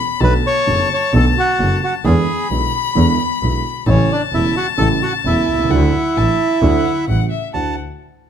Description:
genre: tango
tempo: 131 BPM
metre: 4/4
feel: rubato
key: D major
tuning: A4 = 440 Hz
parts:
  - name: warm violin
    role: second line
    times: 0.0-7.8 s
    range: E5 to B5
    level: -22 LUFS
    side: left 9 dB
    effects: none
  - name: bandoneon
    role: melody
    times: 0.2-7.8 s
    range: C#4 to C#6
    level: -18 LUFS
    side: right 2 dB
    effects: none
  - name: dark concert grand piano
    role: accompaniment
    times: 0.2-7.7 s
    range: E1 to F#4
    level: -20 LUFS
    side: right 4 dB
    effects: none
  - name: clear double bass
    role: bass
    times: 0.2-7.7 s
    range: E1 to E2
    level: -18 LUFS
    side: equal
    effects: none
room: light reverb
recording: close, detailed microphones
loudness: -14 LUFS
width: side -8 dB against mid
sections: 0.0-7.5 A section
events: none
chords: 0.2 Bm7; 2.1 E7; 3.9 A7; 5.7 Dadd9; 7.1 A7; 7.5 Dadd9

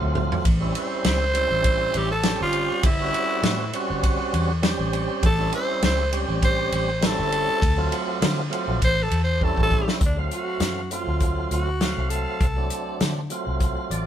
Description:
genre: straight-eighth soul blues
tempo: 100 BPM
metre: 4/4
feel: swing 54% on 16ths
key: D mixolydian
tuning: A4 = 440 Hz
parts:
  - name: tonewheel organ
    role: accompaniment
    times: 0.0-14.1 s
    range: F#3 to E#5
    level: -28 LUFS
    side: right 3 dB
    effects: overdrive, fast rotary speaker
  - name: vintage muted fingered electric bass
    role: bass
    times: 0.0-14.1 s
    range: G1 to D3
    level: -26 LUFS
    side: left 1 dB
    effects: none
  - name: warm soul drum kit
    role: drums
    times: 0.2-14.1 s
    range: hi-hat, kick drum, ride cymbal, snare drum, toms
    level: -24 LUFS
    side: equal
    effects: none
  - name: growling tenor saxophone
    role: melody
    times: 0.8-13.3 s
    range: D4 to B#4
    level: -25 LUFS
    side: equal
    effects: none
room: light reverb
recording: band playing live in one room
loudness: -20 LUFS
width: side -10 dB against mid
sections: 0.0-10.0 A section; 10.0-14.1 B section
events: drum fill 0.0-0.5, 9.4-10.0; tenor saxophone solo 0.0-10.0; tonewheel organ fill 13.6-14.1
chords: 0.5 A7#9; 7.6 D7#9; 8.8 A7#9; 10.0 D7#9

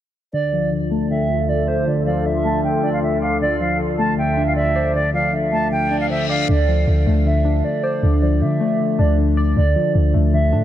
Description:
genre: hip hop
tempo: 156 BPM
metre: 4/4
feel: half-time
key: D minor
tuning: A4 = 441 Hz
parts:
  - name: concert flute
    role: melody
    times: 0.3-6.5 s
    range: D5 to A5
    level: -23 LUFS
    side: right 1 dB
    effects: low-pass filter, tape echo
  - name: hollow clarinet-like synth lead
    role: second line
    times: 0.3-10.6 s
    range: C5 to E5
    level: -24 LUFS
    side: right 4 dB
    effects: chorus, tape echo
  - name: soft electric-piano-like synth keys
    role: accompaniment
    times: 0.3-10.6 s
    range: D3 to D5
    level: -20 LUFS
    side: left 3 dB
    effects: chorus, low-pass filter
  - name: airy breathy pad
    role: sustained chords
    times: 0.3-6.5 s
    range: D2 to A4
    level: -26 LUFS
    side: equal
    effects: chorus, low-pass filter
  - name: reverse cymbal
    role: sound effects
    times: 5.9-6.5 s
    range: none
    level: -30 LUFS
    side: left 7 dB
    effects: none
  - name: clean 808-style bass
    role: bass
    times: 6.5-10.6 s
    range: D2 to D3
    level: -16 LUFS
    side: equal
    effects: none
room: light reverb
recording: none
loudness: -16 LUFS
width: side -11 dB against mid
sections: 0.3-6.5 A section; 6.5-10.6 B section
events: filter sweep 0.3-6.5; reverse cymbal 5.9-6.5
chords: 0.3 Dm

